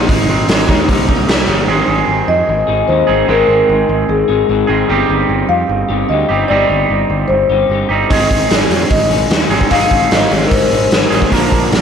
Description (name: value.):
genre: indie rock.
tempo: 150 BPM.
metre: 4/4.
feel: straight.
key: unclear.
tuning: A4 = 444 Hz.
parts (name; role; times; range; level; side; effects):
electric guitar through a small old amp; riff; 0.0-11.8 s; Ab2 to Bb4; -20 LUFS; left 5 dB; lush chorus.
twangy electric guitar; riff; 0.0-11.8 s; Ab2 to Bb4; -17 LUFS; right 5 dB; lush chorus, slapback echo, analog delay.
fuzz picked electric bass; bass; 0.0-11.8 s; G1 to F2; -18 LUFS; equal; overdrive.
raw garage drum kit; drums; 0.1-1.4, 8.1-11.8 s; hi-hat, kick drum, snare drum; -14 LUFS; equal; none.
marimba with soft mallets; melody; 2.3-11.1 s; Ab4 to F5; -15 LUFS; left 2 dB; slapback echo, analog delay.
room: wet lush hall reverb, RT60 2.1 s.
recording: big arena sound.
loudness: -10 LUFS.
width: side -7 dB against mid.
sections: 0.0-1.7 A section; 1.7-11.8 B section.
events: none.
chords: 0.1 Abadd9; 0.9 Cm7; 1.7 Ab; 4.9 Cm/G; 8.1 Ab; 11.3 Bb.